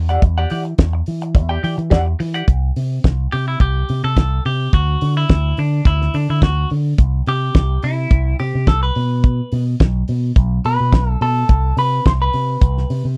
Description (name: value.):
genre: disco.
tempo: 106 BPM.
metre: 4/4.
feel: straight.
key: unclear.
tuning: A4 = 440 Hz.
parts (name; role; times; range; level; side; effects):
picked electric bass with an envelope filter; bass; 0.0-13.2 s; B1 to E3; -20 LUFS; equal; none.
clean electric guitar; accompaniment; 0.1-13.1 s; D4 to G5; -24 LUFS; equal; wah, tube saturation.
damped 70s drum kit; drums; 0.1-13.0 s; hi-hat, kick drum, snare drum; -15 LUFS; equal; none.
room: little or no reverb.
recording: dry, close 1970s-style studio recording.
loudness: -17 LUFS.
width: mono.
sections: 0.0-2.5 A section; 2.5-13.2 B section.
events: clean electric guitar solo 2.5-13.2.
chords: 0.0 Em9; 2.5 C5; 4.7 Dadd9; 7.0 C; 9.0 N.C.; 11.5 Amadd9/C.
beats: | 0.22 0.79 1.35 1.91 | 2.48 3.04 3.60 4.17 | 4.73 5.29 5.86 6.42 | 6.99 7.55 8.11 8.68 | 9.24 9.80 10.37 10.93 | 11.49 12.06 12.62.